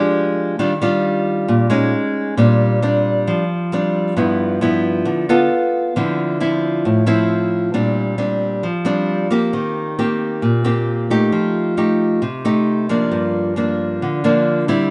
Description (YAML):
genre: bossa nova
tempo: 134 BPM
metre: 4/4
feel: straight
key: D minor, G minor from 7.7 s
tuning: A4 = 439 Hz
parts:
  - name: nylon-string guitar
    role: solo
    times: 0.0-14.9 s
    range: G2 to A4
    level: -18 LUFS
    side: equal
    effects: none
room: moderate plate reverb, RT60 2.7 s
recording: nothing above 11.0 kHz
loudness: -18 LUFS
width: mono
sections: 0.0-7.7 A section; 7.7-14.9 B section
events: none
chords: 0.0 Bb6 (rootless); 0.6 Ebmaj9; 1.9 G#sus4; 2.4 Bb69; 4.2 G13; 5.5 F; 6.0 Dm9; 7.7 Bb69; 9.5 Eb6; 11.3 F9; 13.1 Gm7